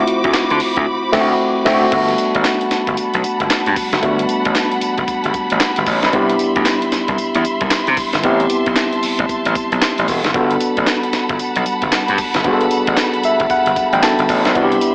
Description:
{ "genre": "R&B, new jack swing", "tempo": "114 BPM", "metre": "4/4", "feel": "swing 62% on 16ths", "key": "G major", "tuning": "A4 = 440 Hz", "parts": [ { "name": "tine electric piano", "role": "accompaniment", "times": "0.0-14.9 s", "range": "A3 to A5", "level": "-17 LUFS", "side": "equal", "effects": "none" }, { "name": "warm studio string section", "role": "sustained chords", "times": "0.0-14.9 s", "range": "G3 to D6", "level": "-21 LUFS", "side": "equal", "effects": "none" }, { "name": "gritty slap bass", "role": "bass", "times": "0.0-14.8 s", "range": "E1 to D3", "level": "-17 LUFS", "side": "equal", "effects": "overdrive" }, { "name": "breakbeat sampler-style drum kit", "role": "drums", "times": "0.1-14.9 s", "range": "crash cymbal, handclaps, hi-hat, kick drum, snare drum, tambourine", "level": "-20 LUFS", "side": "equal", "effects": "none" } ], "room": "light reverb, digital ambience", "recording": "AM radio sound", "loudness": "-13 LUFS", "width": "side -27 dB against mid", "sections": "0.0-1.9 A section; 1.9-14.9 B section", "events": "band accent 0.9-1.9; tine electric piano fill 13.0-14.6", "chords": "0.0 D7; 1.9 Gmaj9; 6.1 Cmaj7; 8.2 Am7; 10.3 Gmaj9" }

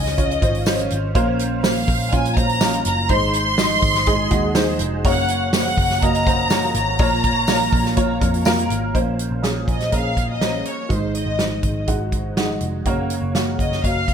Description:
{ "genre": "piano-driven pop", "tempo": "123 BPM", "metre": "4/4", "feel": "straight", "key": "Bb minor", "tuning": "A4 = 440 Hz", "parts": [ { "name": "warm studio violin section", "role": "melody", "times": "0.0-14.1 s", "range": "C5 to C6", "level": "-22 LUFS", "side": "left 1 dB", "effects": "none" }, { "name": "warm upright piano", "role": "accompaniment", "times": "0.0-14.1 s", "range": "Ab2 to Eb5", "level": "-22 LUFS", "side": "right 1 dB", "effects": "ensemble chorus" }, { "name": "vintage muted picked electric bass", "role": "bass", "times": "0.0-14.1 s", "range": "F1 to F2", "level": "-24 LUFS", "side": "equal", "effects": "none" }, { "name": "natural country drum kit", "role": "drums", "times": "0.1-14.1 s", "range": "hi-hat, kick drum, snare drum", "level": "-22 LUFS", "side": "equal", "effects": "none" }, { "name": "tambourine", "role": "percussion", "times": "0.7-8.6 s", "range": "none", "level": "-33 LUFS", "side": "left 11 dB", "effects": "none" } ], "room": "light reverb, small room ambience", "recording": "bright 1980s-style digital production", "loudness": "-17 LUFS", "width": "side -8 dB against mid", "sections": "0.0-8.9 A section; 8.9-14.1 B section", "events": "none", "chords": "0.0 Dbadd9; 1.2 Bbmadd9; 3.1 Ab; 5.0 Gb; 7.0 Bbm; 8.9 Bbmadd9; 10.9 Ab; 12.9 Gb" }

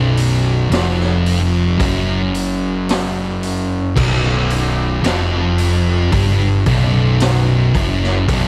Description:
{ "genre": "stoner and doom metal", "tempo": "56 BPM", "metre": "4/4", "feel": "straight", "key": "unclear", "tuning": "A4 = 440 Hz", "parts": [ { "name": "thick fuzz guitar", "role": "riff", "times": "0.0-8.5 s", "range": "B1 to G2", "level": "-20 LUFS", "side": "equal", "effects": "distortion" }, { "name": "thick fuzz guitar", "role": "riff", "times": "0.0-8.5 s", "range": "B1 to G2", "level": "-22 LUFS", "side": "equal", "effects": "distortion" }, { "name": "fuzz picked electric bass", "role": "bass", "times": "0.0-8.5 s", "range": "B0 to G1", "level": "-23 LUFS", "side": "equal", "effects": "overdrive, tube saturation" }, { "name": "raw garage drum kit", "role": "drums", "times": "0.2-8.5 s", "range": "crash cymbal, hi-hat, kick drum, snare drum", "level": "-24 LUFS", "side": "equal", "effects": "none" } ], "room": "small room ambience", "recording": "none", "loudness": "-16 LUFS", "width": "mono", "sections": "0.0-8.5 A section", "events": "none", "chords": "0.0 B5" }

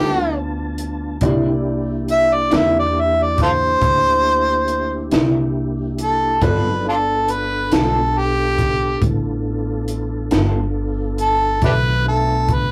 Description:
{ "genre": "slow blues", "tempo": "46 BPM (dotted quarters)", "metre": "12/8", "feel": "straight", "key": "G mixolydian", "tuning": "A4 = 440 Hz", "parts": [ { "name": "warm harmonica", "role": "melody", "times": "0.0-12.7 s", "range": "D4 to E5", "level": "-19 LUFS", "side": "equal", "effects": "overdrive" }, { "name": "dark upright piano", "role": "accompaniment", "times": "0.0-12.7 s", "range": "Bb3 to E5", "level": "-30 LUFS", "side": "equal", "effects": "none" }, { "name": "electric guitar through a small old amp", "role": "accompaniment", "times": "0.0-10.6 s", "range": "C3 to A4", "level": "-24 LUFS", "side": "equal", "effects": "harmonic tremolo" }, { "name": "mellow tonewheel organ", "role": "sustained chords", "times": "0.0-12.7 s", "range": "Eb3 to A5", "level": "-28 LUFS", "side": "equal", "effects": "slow rotary speaker, chorus vibrato" }, { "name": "upright bass", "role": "bass", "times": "0.0-12.7 s", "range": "G1 to E2", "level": "-25 LUFS", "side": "equal", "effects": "none" }, { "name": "compact cocktail drum kit", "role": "drums", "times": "0.8-12.7 s", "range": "hi-hat, kick drum, snare drum", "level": "-23 LUFS", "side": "equal", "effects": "none" } ], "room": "wet booth ambience, RT60 0.2 s", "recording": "rough rehearsal-room recording, warm saturation", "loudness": "-18 LUFS", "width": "mono", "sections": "0.0-12.7 A section", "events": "none", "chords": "0.0 G9; 1.2 C9; 6.4 G9" }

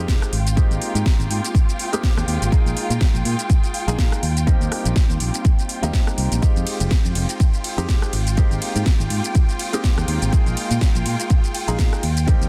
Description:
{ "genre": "filtered disco house", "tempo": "123 BPM", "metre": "4/4", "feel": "swing 57% on 16ths", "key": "unclear", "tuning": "A4 = 441 Hz", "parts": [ { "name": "clear grand piano", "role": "accompaniment", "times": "0.0-12.5 s", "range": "G3 to Ab4", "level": "-31 LUFS", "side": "equal", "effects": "phaser, vintage 12-bit sampler grit, sidechain pumping" }, { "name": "warm symphonic violin section", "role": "sustained chords", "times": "0.0-12.5 s", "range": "F4 to G5", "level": "-33 LUFS", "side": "equal", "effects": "sidechain pumping" }, { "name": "fingered electric bass", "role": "bass", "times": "0.0-12.5 s", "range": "F1 to Bb2", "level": "-24 LUFS", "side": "equal", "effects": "sidechain pumping" }, { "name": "electronic kick drum", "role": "drums", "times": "0.1-12.4 s", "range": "none", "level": "-19 LUFS", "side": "equal", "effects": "none" }, { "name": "house drum kit", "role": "drums", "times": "0.1-12.5 s", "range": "hi-hat, ride cymbal, rim click, shaker, snare drum", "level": "-30 LUFS", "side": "equal", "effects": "sidechain pumping on hats, sidechain pumping on cymbals, sidechain pumping on perc" } ], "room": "digital ambience", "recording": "dense, heavily limited modern master", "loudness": "-20 LUFS", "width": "mono", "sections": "0.0-12.5 A section", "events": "none", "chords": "0.3 Abmaj9; 2.5 Bb7sus4; 4.2 Eb6; 6.4 Fm9; 8.1 Abmaj9; 10.3 Bb7sus4" }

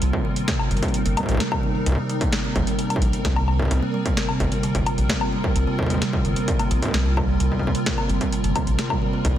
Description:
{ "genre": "IDM", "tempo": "130 BPM", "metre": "4/4", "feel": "straight", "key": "C minor", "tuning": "A4 = 436 Hz", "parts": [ { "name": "hollow soft pad", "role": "sustained chords", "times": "0.0-9.4 s", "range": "G3 to Bb4", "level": "-28 LUFS", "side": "equal", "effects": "ensemble chorus" }, { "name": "kalimba", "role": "arpeggios", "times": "0.0-9.2 s", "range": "C3 to C4", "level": "-26 LUFS", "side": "right 2 dB", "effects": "tape echo" }, { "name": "round analog bass", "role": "bass", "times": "0.0-9.3 s", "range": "G1 to C2", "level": "-22 LUFS", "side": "equal", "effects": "tube saturation" }, { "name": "electro analog drum machine", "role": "drums", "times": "0.0-9.3 s", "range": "hi-hat, snare drum, woodblock", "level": "-27 LUFS", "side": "left 2 dB", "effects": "tape echo" }, { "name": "electronic kick drum", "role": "drums", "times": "0.1-9.3 s", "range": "none", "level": "-25 LUFS", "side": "equal", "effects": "distortion" } ], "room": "light reverb, digital ambience", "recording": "dense, heavily limited modern master", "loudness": "-20 LUFS", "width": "side -11 dB against mid", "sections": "0.0-9.4 A section", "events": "none", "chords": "0.0 Cm7; 3.7 Gm7" }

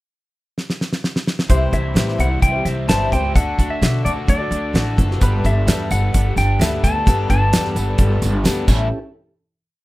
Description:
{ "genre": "folk rock and heartland rock", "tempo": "130 BPM", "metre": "4/4", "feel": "straight", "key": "unclear", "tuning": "A4 = 440 Hz", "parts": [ { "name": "damped 70s drum kit", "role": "drums", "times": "0.6-8.8 s", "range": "crash cymbal, hi-hat, kick drum, snare drum", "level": "-18 LUFS", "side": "equal", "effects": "none" }, { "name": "clean lap steel guitar", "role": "melody", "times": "1.5-8.2 s", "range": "B4 to A5", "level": "-23 LUFS", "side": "left 1 dB", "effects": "none" }, { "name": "picked swing-style acoustic guitar", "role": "accompaniment", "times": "1.5-8.9 s", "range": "A2 to C5", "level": "-26 LUFS", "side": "left 4 dB", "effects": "none" }, { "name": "crunchy overdriven guitar", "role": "riff", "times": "1.5-8.9 s", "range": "A2 to C5", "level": "-28 LUFS", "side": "right 1 dB", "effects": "none" }, { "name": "upright bass", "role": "bass", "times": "1.5-8.9 s", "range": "F#1 to B2", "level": "-19 LUFS", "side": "equal", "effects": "none" }, { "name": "mellow tonewheel organ", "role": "sustained chords", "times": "4.9-9.0 s", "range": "G3 to C5", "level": "-30 LUFS", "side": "equal", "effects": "slow rotary speaker" }, { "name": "tambourine", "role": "percussion", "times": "5.2-8.9 s", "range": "none", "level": "-34 LUFS", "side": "right 5 dB", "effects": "none" } ], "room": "light reverb", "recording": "rough home demo mix", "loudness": "-15 LUFS", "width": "side -18 dB against mid", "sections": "0.0-1.5 pickup bar; 1.5-8.9 pre-chorus; 8.9-9.8 final hit", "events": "drum fill 0.6-1.5", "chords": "0.0 N.C.; 1.5 C; 3.4 D; 5.2 Gadd9; 8.7 A7; 8.9 A7(no3) (rootless)" }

